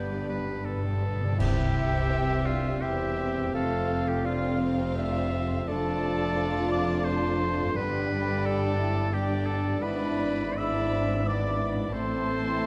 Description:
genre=classical, slow romantic movement for symphony orchestra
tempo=85 BPM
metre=3/4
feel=uneven beats, rubato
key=C major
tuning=A4 = 440 Hz
part: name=rich studio violin section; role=melody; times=0.0-12.7 s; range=D5 to B5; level=-46 LUFS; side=equal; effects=none
part: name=clear clarinet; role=second line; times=0.0-1.0 s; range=D4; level=-45 LUFS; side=equal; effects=none
part: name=clear oboe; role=second line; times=0.0-12.7 s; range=F4 to E5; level=-37 LUFS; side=equal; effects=none
part: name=mellow hollow concert flute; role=second line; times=0.0-12.7 s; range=F5 to G6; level=-40 LUFS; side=equal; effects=none
part: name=rich studio violin section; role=second line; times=0.0-12.7 s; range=D4 to D5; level=-43 LUFS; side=equal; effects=none
part: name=mellow bassoon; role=accompaniment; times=0.0-12.7 s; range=G3 to F4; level=-39 LUFS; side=equal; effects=none
part: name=rich studio viola section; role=accompaniment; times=0.0-12.7 s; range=G3 to D4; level=-41 LUFS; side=equal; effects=none
part: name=warm French horn section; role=sustained chords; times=0.0-12.7 s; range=G3 to G4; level=-36 LUFS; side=equal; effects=none
part: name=concert harp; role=arpeggios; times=0.0-12.7 s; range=F2 to D5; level=-41 LUFS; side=equal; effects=none
part: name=clear studio cello section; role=bass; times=0.0-12.7 s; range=E2 to C3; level=-38 LUFS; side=equal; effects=none
part: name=rich studio double bass section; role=bass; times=0.0-12.7 s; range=E1 to C2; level=-35 LUFS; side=equal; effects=none
part: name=timpani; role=percussion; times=0.0-2.4, 7.8-8.7 s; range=G2 to C3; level=-35 LUFS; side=equal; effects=none
part: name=dark trombone section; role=sustained chords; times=1.4-12.7 s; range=C3 to B3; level=-40 LUFS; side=equal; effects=none
part: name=clear trumpet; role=stabs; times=1.4-12.7 s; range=A4 to F5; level=-39 LUFS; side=equal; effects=none
part: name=clash cymbals and concert bass drum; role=percussion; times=1.4-2.8 s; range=none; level=-39 LUFS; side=equal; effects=none
room=wet scoring stage reverb, RT60 1.9 s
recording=dark, warm production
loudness=-28 LUFS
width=mono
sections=0.0-1.4 A section; 1.4-12.7 B section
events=timpani fill 0.0-1.4; band accent 1.4-2.1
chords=0.0 G; 1.4 C; 3.5 F; 5.7 Dm/F; 7.8 G; 9.8 E7/G#; 11.9 Am

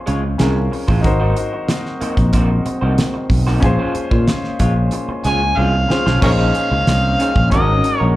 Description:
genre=lush 1970s-style soul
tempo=93 BPM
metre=4/4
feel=straight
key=unclear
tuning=A4 = 440 Hz
part: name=clear concert grand piano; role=accompaniment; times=0.0-8.2 s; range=Db4 to C5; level=-23 LUFS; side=left 2 dB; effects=slapback echo
part: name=electric guitar through a small old amp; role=riff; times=0.1-8.1 s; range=Ab3 to Db5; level=-25 LUFS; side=right 3 dB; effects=spring reverb, slapback echo
part: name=fingered electric bass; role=bass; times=0.1-8.1 s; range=Ab1 to Bb2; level=-16 LUFS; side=equal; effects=none
part: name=damped 70s drum kit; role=drums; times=0.1-8.0 s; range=crash cymbal, hi-hat, kick drum, snare drum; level=-18 LUFS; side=equal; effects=none
part: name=mellow French horn section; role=sustained chords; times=1.0-8.2 s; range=Gb3 to Db4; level=-28 LUFS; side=equal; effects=none
part: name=overdriven harmonica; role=melody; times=5.3-8.1 s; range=Bb4 to Ab5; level=-18 LUFS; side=equal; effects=slapback echo
room=little or no reverb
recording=live gig heard through the venue's PA, club reverb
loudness=-14 LUFS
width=side -16 dB against mid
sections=0.0-6.2 A section; 6.2-8.2 B section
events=drum fill 5.6-6.2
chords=0.0 Bbm9; 1.0 Ab9; 3.6 Bbm9; 6.2 Bbm11; 7.5 Ab9sus4

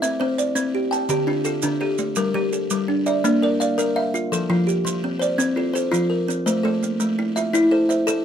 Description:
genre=southern african traditional, mbira-style interlocking cycle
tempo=112 BPM (dotted quarters)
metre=12/8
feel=straight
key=C mixolydian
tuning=A4 = 440 Hz
part: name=buzzing kalimba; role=arpeggios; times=0.0-8.2 s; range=D3 to G5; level=-21 LUFS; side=left 2 dB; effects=none
part: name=kalimba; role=arpeggios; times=0.0-8.2 s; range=D3 to A5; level=-24 LUFS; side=right 3 dB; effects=none
part: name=maracas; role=percussion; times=0.0-8.2 s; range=none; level=-31 LUFS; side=right 7 dB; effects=none
room=light reverb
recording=dark, warm production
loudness=-19 LUFS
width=side -8 dB against mid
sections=0.0-8.2 A section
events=none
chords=0.0 C; 1.1 Dm; 2.2 Gm; 3.2 Bb; 4.3 F; 6.5 Am

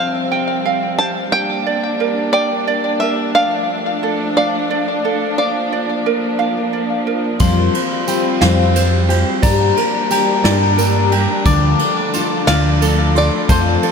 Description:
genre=indie folk with a building arrangement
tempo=59 BPM (dotted quarters)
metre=6/8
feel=straight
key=unclear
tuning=A4 = 441 Hz
part: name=bluegrass banjo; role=melody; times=0.0-7.0, 12.5-13.9 s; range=C5 to A5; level=-20 LUFS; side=left 1 dB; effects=ping-pong delay
part: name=fingerpicked steel-string acoustic guitar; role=accompaniment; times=0.0-1.3 s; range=C4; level=-40 LUFS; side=left 1 dB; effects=none
part: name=warm chamber string section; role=sustained chords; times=0.0-13.9 s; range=F3 to D4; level=-21 LUFS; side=equal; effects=none
part: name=ukulele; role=arpeggios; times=0.0-13.9 s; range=F4 to G5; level=-20 LUFS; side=right 5 dB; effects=ping-pong delay
part: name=glockenspiel with hard plastic mallets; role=second line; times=7.4-13.9 s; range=A5 to D6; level=-22 LUFS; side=left 7 dB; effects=ping-pong delay
part: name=picked twelve-string acoustic guitar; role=accompaniment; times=7.4-13.9 s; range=D3 to C5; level=-19 LUFS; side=left 5 dB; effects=lush chorus
part: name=fingered electric bass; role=bass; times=7.4-13.8 s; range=D2 to G2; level=-16 LUFS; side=equal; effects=none
part: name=soft brush drum kit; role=drums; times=7.4-13.9 s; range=kick drum, ride cymbal, snare drum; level=-20 LUFS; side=right 1 dB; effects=none
part: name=tambourine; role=percussion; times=7.4-13.7 s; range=none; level=-33 LUFS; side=right 8 dB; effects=none
room=wet huge ambient reverb, RT60 8.0 s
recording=dreamy mix soaked in reverb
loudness=-14 LUFS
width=side -6 dB against mid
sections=0.0-13.9 A section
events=none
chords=0.0 Fsus2; 1.3 Gm; 3.4 Dm; 5.4 Bb; 7.4 Fsus2; 9.4 Gm; 11.5 Dm

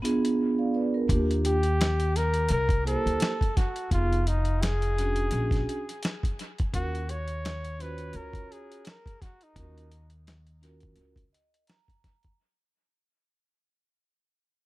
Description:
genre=hip hop, jazz-hop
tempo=85 BPM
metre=4/4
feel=swing 57% on 16ths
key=Eb minor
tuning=A4 = 440 Hz
part: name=vibraphone with soft mallets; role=accompaniment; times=0.0-12.3 s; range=Bb3 to Bb5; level=-29 LUFS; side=right 2 dB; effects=none
part: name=dusty soul sampler-style drum kit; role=drums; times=0.1-12.4 s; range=hi-hat, kick drum, snare drum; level=-29 LUFS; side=equal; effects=none
part: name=upright bass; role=bass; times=1.1-11.3 s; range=F1 to Eb2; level=-28 LUFS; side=equal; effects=none
part: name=breathy flugelhorn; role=melody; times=1.5-10.1 s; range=Eb4 to Db5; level=-31 LUFS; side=equal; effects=dub echo
room=little or no reverb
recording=echo-heavy mix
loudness=-24 LUFS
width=side -19 dB against mid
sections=0.0-12.4 A section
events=fade-out 0.0-12.4; drums muted 0.4-1.1; vibraphone fill 11.0-12.4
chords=0.0 Bb7b9; 1.1 Ebmaj9; 2.5 C7; 3.9 Fm7b5; 5.3 Bb7alt; 6.7 Ebm7

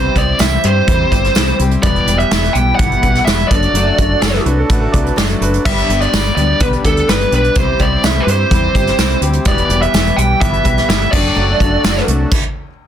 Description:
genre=folk rock and heartland rock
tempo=126 BPM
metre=4/4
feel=straight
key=unclear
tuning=A4 = 439 Hz
part: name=biting lead guitar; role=melody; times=0.0-12.0 s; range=A4 to G5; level=-16 LUFS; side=right 2 dB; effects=overdrive
part: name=picked steel-string acoustic guitar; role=accompaniment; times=0.0-12.3 s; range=E2 to G4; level=-20 LUFS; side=left 6 dB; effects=none
part: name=accordion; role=sustained chords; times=0.0-12.3 s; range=E3 to D5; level=-26 LUFS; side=right 3 dB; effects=light tremolo tuning
part: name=fingered electric bass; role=bass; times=0.0-12.2 s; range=E1 to G2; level=-17 LUFS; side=equal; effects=none
part: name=soft brush drum kit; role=drums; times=0.2-12.4 s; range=crash cymbal, hi-hat, kick drum, snare drum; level=-16 LUFS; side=equal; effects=none
part: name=tambourine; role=percussion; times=0.4-12.0 s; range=none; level=-29 LUFS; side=right 7 dB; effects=none
part: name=clear upright piano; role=second line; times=4.2-5.7 s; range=E4 to D5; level=-23 LUFS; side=right 5 dB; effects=tape echo
room=studio ambience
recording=dense, heavily limited modern master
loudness=-11 LUFS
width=side -10 dB against mid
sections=0.0-12.9 A section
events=stop 12.3-12.9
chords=0.0 C; 1.8 Em; 3.5 D/F#; 5.7 G; 7.6 C; 9.5 Em; 11.1 D/F#

